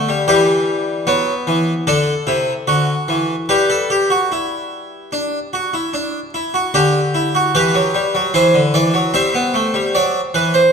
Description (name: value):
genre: classical, baroque-style 3-part fugue for harpsichord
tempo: 75 BPM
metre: 4/4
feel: straight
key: G major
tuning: A4 = 440 Hz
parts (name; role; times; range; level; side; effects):
- harpsichord; solo; 0.0-10.7 s; C3 to E5; -14 LUFS; equal; none
room: wet recital hall reverb, RT60 1.4 s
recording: none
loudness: -14 LUFS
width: side -6 dB against mid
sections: 0.0-6.7 A section; 6.7-10.7 B section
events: none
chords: 0.3 Em; 1.9 C69; 2.7 D; 3.5 G; 6.7 G/D; 8.3 C; 9.9 D7